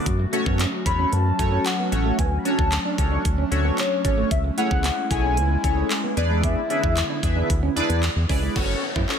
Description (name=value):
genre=dance-pop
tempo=113 BPM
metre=4/4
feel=straight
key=F# minor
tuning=A4 = 440 Hz
part: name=chorused polysynth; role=accompaniment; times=0.0-9.2 s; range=A3 to E5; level=-27 LUFS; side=left 1 dB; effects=phaser, sidechain pumping
part: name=airy breathy pad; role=sustained chords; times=0.0-8.5 s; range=D3 to F#4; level=-30 LUFS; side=left 1 dB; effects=chorus, sidechain pumping
part: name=electric guitar at the edge of break-up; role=riff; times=0.0-9.1 s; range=G#3 to F#4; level=-31 LUFS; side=right 9 dB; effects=lush chorus
part: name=round analog bass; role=bass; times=0.1-9.1 s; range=F#1 to F#2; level=-23 LUFS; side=equal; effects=sidechain pumping
part: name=pop drum kit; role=drums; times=0.1-9.2 s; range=crash cymbal, handclaps, hi-hat, kick drum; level=-26 LUFS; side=equal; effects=none
part: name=warm velvety synth lead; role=melody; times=0.9-7.2 s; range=C#5 to B5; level=-27 LUFS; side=left 3 dB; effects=chorus, analog delay
part: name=downlifter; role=sound effects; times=8.6-9.2 s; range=none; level=-30 LUFS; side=equal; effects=none
room=moderate plate reverb, RT60 1.7 s, digital ambience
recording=dreamy mix soaked in reverb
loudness=-20 LUFS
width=side -7 dB against mid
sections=0.0-8.6 A section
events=none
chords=0.1 F#m; 2.2 Dmaj7; 4.3 Amaj7; 6.2 E7; 8.6 F#m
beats=| 0.06 0.59 1.12 1.66 | 2.19 2.72 3.25 3.78 | 4.31 4.84 5.37 5.90 | 6.43 6.97 7.50 8.03 | 8.56 9.09